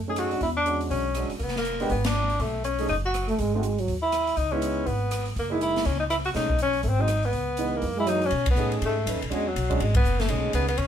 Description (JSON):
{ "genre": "jazz, small-group swing and bop", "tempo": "243 BPM", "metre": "4/4", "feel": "swing 60% on 8ths", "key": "B mixolydian", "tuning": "A4 = 438 Hz", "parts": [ { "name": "upright bass", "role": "bass", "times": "0.0-10.9 s", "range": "F1 to B2", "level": "-29 LUFS", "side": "equal", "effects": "none" }, { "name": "mellow tenor saxophone", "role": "melody", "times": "0.1-10.9 s", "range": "F#3 to G#4", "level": "-26 LUFS", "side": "left 2 dB", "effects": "none" }, { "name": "warm upright piano", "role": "accompaniment", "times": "0.1-10.7 s", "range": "E3 to B4", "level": "-30 LUFS", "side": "right 4 dB", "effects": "none" }, { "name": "swinging big-band drum kit", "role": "drums", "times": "0.2-10.9 s", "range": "hi-hat, kick drum, ride cymbal, rim click, snare drum", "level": "-31 LUFS", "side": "equal", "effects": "none" }, { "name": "dark trombone", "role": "second line", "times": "3.3-4.0, 8.0-8.3 s", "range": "F#3 to A3", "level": "-28 LUFS", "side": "right 2 dB", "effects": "none" } ], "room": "moderate small room reverb, RT60 0.5 s", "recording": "band playing live in one room", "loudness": "-23 LUFS", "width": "side -9 dB against mid", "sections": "0.0-8.3 A section; 8.3-10.9 A section", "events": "band accent 2.0, 8.4, 9.9", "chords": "0.4 E13; 1.4 Fdim7; 2.4 B7sus2; 3.4 G#5; 4.4 C#m7; 5.4 F#13; 6.3 B13; 6.8 G#7; 7.3 C#m7; 7.8 F#13; 8.3 B13; 9.3 E13; 10.3 B13", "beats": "0.17 | 0.42 0.66 0.91 1.16 | 1.41 1.65 1.90 2.15 | 2.39 2.64 2.89 3.13 | 3.38 3.63 3.88 4.12 | 4.37 4.62 4.86 5.11 | 5.36 5.60 5.85 6.10 | 6.34 6.59 6.84 7.09 | 7.33 7.58 7.83 8.07 | 8.32 8.57 8.81 9.06 | 9.31 9.55 9.80 10.05 | 10.29 10.54 10.79" }